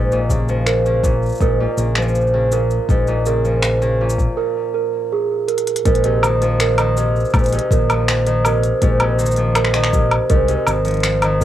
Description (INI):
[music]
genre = folktronica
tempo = 81 BPM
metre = 4/4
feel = straight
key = unclear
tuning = A4 = 435 Hz
[part]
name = Celtic harp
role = arpeggios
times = 0.0-11.4 s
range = Ab2 to F3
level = -20 LUFS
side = left 2 dB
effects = cassette tape, tape echo
[part]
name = fingered electric bass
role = bass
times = 0.0-11.4 s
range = Ab1 to C2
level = -19 LUFS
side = equal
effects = tube saturation
[part]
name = organic electronic drum kit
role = drums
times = 0.1-11.4 s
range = finger snaps, hi-hat, shaker, woodblock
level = -21 LUFS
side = equal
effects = overdrive, cassette tape
[part]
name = electronic kick drum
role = drums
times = 0.3-11.4 s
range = none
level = -18 LUFS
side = left 1 dB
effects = overdrive, cassette tape
[part]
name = celesta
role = second line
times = 0.7-11.4 s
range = Ab4 to Bb4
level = -22 LUFS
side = right 7 dB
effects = vintage 12-bit sampler grit, cassette tape, analog delay, plate reverb
[sound]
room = light reverb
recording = home recording on cassette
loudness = -14 LUFS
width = side -12 dB against mid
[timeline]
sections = 0.0-5.9 A section; 5.9-11.4 B section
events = break 4.4-5.9; drum fill 5.5-5.9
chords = 0.0 Bbm; 5.9 Fm7/Bb